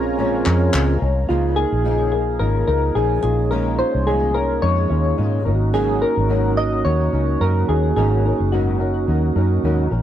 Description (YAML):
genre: indie pop, bedroom pop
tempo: 108 BPM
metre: 4/4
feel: swing 55% on 16ths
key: unclear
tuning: A4 = 440 Hz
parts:
  - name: soft electric-piano-like synth keys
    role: melody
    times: 0.0-9.0 s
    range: F4 to Eb5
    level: -22 LUFS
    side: left 1 dB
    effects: lush chorus, tape echo
  - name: flamenco guitar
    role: accompaniment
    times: 0.0-10.0 s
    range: Ab2 to Bb4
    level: -25 LUFS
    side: left 5 dB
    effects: ensemble chorus, warbly pitch drift
  - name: mellow tonewheel organ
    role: accompaniment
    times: 0.0-9.9 s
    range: Bb3 to Ab4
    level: -24 LUFS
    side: right 6 dB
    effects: slow rotary speaker, cassette tape
  - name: warm analog pad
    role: sustained chords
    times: 0.0-1.3 s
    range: Bb4 to Bb5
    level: -33 LUFS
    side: equal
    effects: chorus
  - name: vintage muted fingered electric bass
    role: bass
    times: 0.0-10.0 s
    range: Gb1 to Ab2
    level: -20 LUFS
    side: equal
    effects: transformer saturation
  - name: group handclap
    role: percussion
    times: 0.5-0.9 s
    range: none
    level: -24 LUFS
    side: left 3 dB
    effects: none
room: little or no reverb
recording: dry, gritty hardware recording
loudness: -16 LUFS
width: side -11 dB against mid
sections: 0.0-1.3 A section; 1.3-10.0 B section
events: none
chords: 0.0 Bbm7; 1.3 Db69; 3.2 Bbm11; 5.5 Ab9sus4